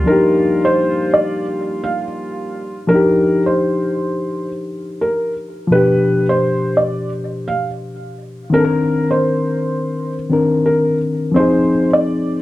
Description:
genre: hip hop.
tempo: 85 BPM.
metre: 4/4.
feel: swing 62% on 16ths.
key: Eb major.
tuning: A4 = 440 Hz.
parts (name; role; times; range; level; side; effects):
reed electric piano; accompaniment; 0.0-12.4 s; B2 to Bb4; -16 LUFS; left 2 dB; cassette tape, low-pass filter.
warm brass ensemble; sustained chords; 0.0-2.8 s; A#2 to F4; -25 LUFS; right 2 dB; low-pass filter.
felt-muted upright piano; melody; 0.1-12.4 s; Bb4 to F5; -18 LUFS; right 1 dB; low-pass filter, analog delay.
room: wet small room reverb, RT60 0.5 s.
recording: dark, warm production.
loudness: -14 LUFS.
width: side -16 dB against mid.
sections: 0.0-2.9 A section; 2.9-12.4 B section.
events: none.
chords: 0.0 Ebmaj9; 5.7 G7; 8.5 Cm9; 11.4 Fm7.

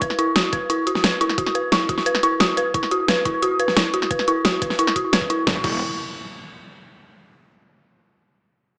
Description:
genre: dark technical drum and bass.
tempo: 176 BPM.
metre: 4/4.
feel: straight.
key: unclear.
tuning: A4 = 439 Hz.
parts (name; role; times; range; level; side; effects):
dark detuned synth bell; arpeggios; 0.0-5.8 s; E4 to B4; -23 LUFS; equal; chorus, sidechain pumping, low-pass filter, digital delay.
dubstep drum kit; drums; 0.0-5.7 s; crash cymbal, hi-hat, snare drum; -24 LUFS; equal; none.
electronic kick drum; drums; 0.0-5.7 s; none; -33 LUFS; equal; none.
phased detuned saw bass; bass; 5.5-5.8 s; E1; -30 LUFS; equal; phaser, tube saturation, sidechain pumping.
impact; sound effects; 5.5-6.8 s; none; -39 LUFS; equal; none.
room: moderate plate reverb, RT60 1.7 s, digital ambience.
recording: small speaker sound.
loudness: -20 LUFS.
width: mono.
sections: 0.0-5.5 A section; 5.5-6.8 B section.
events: filter sweep on synth bell 0.0-5.5.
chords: 0.0 E5; 5.5 N.C..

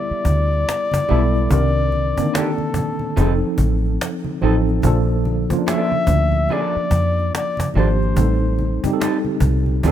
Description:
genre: R&B, neo-soul.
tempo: 72 BPM.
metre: 4/4.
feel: swing 59% on 16ths.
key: unclear.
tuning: A4 = 440 Hz.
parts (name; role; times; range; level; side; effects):
mellow flugelhorn; melody; 0.0-9.0 s; A4 to E5; -23 LUFS; left 3 dB; slapback echo.
tine electric piano; accompaniment; 0.0-9.9 s; D3 to Bb4; -22 LUFS; right 1 dB; overdrive, fast stereo tremolo.
deep dub fingered electric bass; bass; 0.1-9.9 s; F1 to F2; -18 LUFS; equal; none.
cajon; drums; 0.1-9.9 s; none; -25 LUFS; equal; none.
congas; percussion; 0.3-9.9 s; none; -32 LUFS; left 2 dB; none.
electric guitar through a small old amp; second line; 1.1-9.9 s; Eb3 to A4; -29 LUFS; right 5 dB; none.
room: studio ambience.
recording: rough home demo mix.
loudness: -16 LUFS.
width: side -10 dB against mid.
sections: 0.0-9.9 A section.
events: none.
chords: 0.0 G69; 1.5 Cm9; 3.2 F7; 4.8 Bbmaj7; 8.2 Am7b5.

